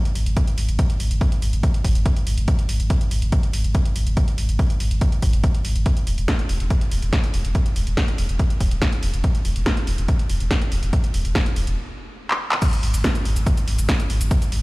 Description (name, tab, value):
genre	driving peak-time techno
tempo	142 BPM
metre	4/4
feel	straight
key	unclear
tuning	A4 = 439 Hz
part	punchy analog drum machine	drums	0.1-14.6 s	crash cymbal, handclaps, hi-hat, shaker, snare drum	-27 LUFS	equal	sidechain pumping on hats, sidechain pumping on cymbals, sidechain pumping on perc
part	warm sub bass	bass	0.2-14.6 s	E1 to G#1	-22 LUFS	equal	tube saturation, sidechain pumping, low-pass filter
part	electronic kick drum	drums	0.4-14.4 s	none	-20 LUFS	equal	none
room	little or no reverb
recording	played on a big sound system in a bare room, stone room reverb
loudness	-18 LUFS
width	side -22 dB against mid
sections	0.0-12.6 A section; 12.6-14.6 B section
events	stop 11.8-12.6; drum fill 12.3-12.6; drop 12.6-14.6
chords	none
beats	0.37 | 0.79 1.21 1.63 2.06 | 2.48 2.90 3.32 3.75 | 4.17 4.59 5.01 5.44 | 5.86 6.28 6.70 7.13 | 7.55 7.97 8.39 8.82 | 9.24 9.66 10.09 10.51 | 10.93 11.35 11.78 12.20 | 12.62 13.04 13.46 13.89 | 14.31